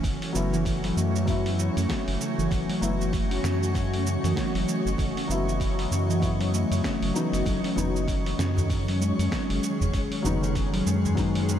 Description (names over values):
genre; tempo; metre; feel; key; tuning
organic downtempo; 97 BPM; 4/4; swing 59% on 16ths; F# dorian; A4 = 442 Hz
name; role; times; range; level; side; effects
granular cloud pad; sustained chords; 0.0-11.6 s; D#3 to D#5; -32 LUFS; left 1 dB; built-in reverb, sidechain pumping
round analog bass; bass; 0.0-11.6 s; F#1 to F#2; -28 LUFS; equal; sidechain pumping
dusty soul sampler-style drum kit; drums; 0.0-11.6 s; cabasa, hi-hat, snare drum; -35 LUFS; right 1 dB; overdrive
electronic kick drum; drums; 0.0-11.3 s; none; -30 LUFS; equal; none
twinkling granular texture; texture; 0.0-11.6 s; C#4 to C#5; -37 LUFS; right 1 dB; built-in reverb, wide subtle chorus
felt-muted upright piano; accompaniment; 0.3-11.6 s; F#3 to E4; -34 LUFS; left 3 dB; vintage 12-bit sampler grit, sidechain pumping, tape echo
steel tongue drum; arpeggios; 0.3-11.5 s; C#3 to C#4; -29 LUFS; equal; low-pass filter, tape echo
udu; percussion; 7.8-11.2 s; none; -32 LUFS; equal; none
room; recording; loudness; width
moderate huge ambient reverb, RT60 7.7 s; dreamy mix soaked in reverb; -23 LUFS; side -10 dB against mid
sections
0.0-11.6 A section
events
none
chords
0.0 F#m7; 7.5 C#sus2/F#